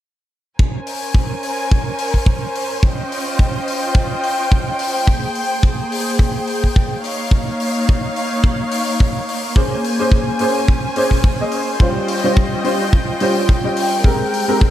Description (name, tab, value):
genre	nu-disco, nu disco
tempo	107 BPM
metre	4/4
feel	swing 55% on 16ths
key	Bb dorian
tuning	A4 = 441 Hz
part	muted studio string section	sustained chords	0.6-14.7 s	Ab3 to Ab5	-21 LUFS	equal	sidechain pumping
part	kick drum	drums	0.6-14.7 s	none	-14 LUFS	equal	none
part	hi-hat	drums	0.9-14.5 s	none	-29 LUFS	left 6 dB	none
part	warm baby grand piano	accompaniment	9.6-14.7 s	G3 to Eb5	-19 LUFS	equal	ensemble chorus, analog delay
room	moderate plate reverb, RT60 1.9 s, small room ambience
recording	dreamy mix soaked in reverb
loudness	-15 LUFS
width	side -12 dB against mid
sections	0.6-14.7 A section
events	none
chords	0.6 Bbm9; 2.8 Eb13; 5.1 Abmaj9; 7.0 Db69; 9.6 Bbm9; 11.8 Eb13; 14.0 Abmaj9